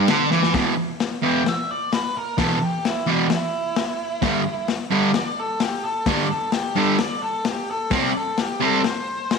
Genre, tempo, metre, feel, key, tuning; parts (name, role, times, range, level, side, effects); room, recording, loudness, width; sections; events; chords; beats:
garage rock duo or trio; 130 BPM; 4/4; straight; E minor; A4 = 444 Hz
fuzz guitar; riff; 0.0-8.8 s; E2 to C4; -21 LUFS; right 2 dB; distortion
crunchy breakbeat drum kit; drums; 0.1-9.4 s; hi-hat, kick drum, ride cymbal, snare drum; -25 LUFS; left 6 dB
octave-fuzz lead guitar; melody; 1.3-9.4 s; D4 to G5; -26 LUFS; equal; distortion
moderate echo chamber reverb, RT60 1.3 s, studio reverb; 1960s-style stereo; -19 LUFS; side -5 dB against mid
0.5-9.4 A section
drum fill 0.3
0.0 Em; 0.5 E5; 4.2 G5; 7.9 C5
0.09 | 0.54 1.00 1.46 1.92 | 2.38 2.84 3.30 3.76 | 4.22 4.68 5.14 5.60 | 6.07 6.53 6.99 7.45 | 7.92 8.38 8.84 9.31